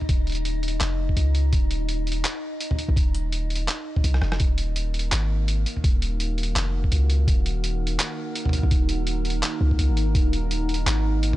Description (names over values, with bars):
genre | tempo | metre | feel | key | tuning
half-time drum and bass | 167 BPM | 4/4 | swing 57% on 16ths, half-time | Eb minor | A4 = 440 Hz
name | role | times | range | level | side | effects
boom bap sampler-style drum kit | drums | 0.0-11.4 s | handclaps, hi-hat, rim click, toms | -28 LUFS | equal | none
metallic inharmonic drone | texture | 0.0-11.4 s | Bb3 to Eb4 | -34 LUFS | equal | chorus, built-in reverb
long sustained 808-style bass | bass | 0.1-11.4 s | Eb1 to Db2 | -23 LUFS | equal | none
electronic kick drum | drums | 0.1-10.2 s | none | -22 LUFS | equal | none
deep dark ambient pad | sustained chords | 5.6-11.4 s | Eb4 to Bb5 | -32 LUFS | equal | chorus, built-in reverb, vintage 12-bit sampler grit, sidechain pumping
room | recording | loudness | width
digital ambience | dry, gritty hardware recording, nothing above 10.4 kHz | -21 LUFS | side -16 dB against mid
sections
0.0-11.4 A section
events
drum fill 4.1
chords
0.0 Ebm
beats
| 0.09 0.45 0.81 1.17 | 1.53 1.89 2.25 2.61 | 2.96 3.32 3.68 4.04 | 4.40 4.76 5.12 5.48 | 5.84 6.20 6.56 6.92 | 7.28 7.64 8.00 8.35 | 8.71 9.07 9.43 9.79 | 10.15 10.51 10.87 11.23